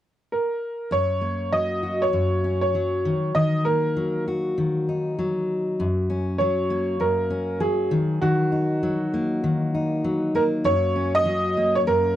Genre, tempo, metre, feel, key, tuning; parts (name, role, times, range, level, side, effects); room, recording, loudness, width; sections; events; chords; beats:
acoustic pop; 98 BPM; 4/4; swing 60% on 16ths; F# major; A4 = 441 Hz
clear upright piano; melody; 0.3-12.2 s; F#4 to D#5; -23 LUFS; right 2 dB
fingerpicked steel-string acoustic guitar; accompaniment; 0.9-12.2 s; F#2 to F#4; -23 LUFS; left 1 dB
moderate booth ambience, RT60 0.2 s; dry, close 1970s-style studio recording; -21 LUFS; side -12 dB against mid
0.9-5.8 A section; 5.8-12.2 B section
0.0 N.C.; 0.9 F#; 3.0 D#m; 5.8 F#; 7.9 D#m; 10.7 F#
0.30 | 0.91 1.52 2.13 2.74 | 3.35 3.96 4.57 5.17 | 5.78 6.39 7.00 7.61 | 8.22 8.83 9.44 10.05 | 10.66 11.27 11.87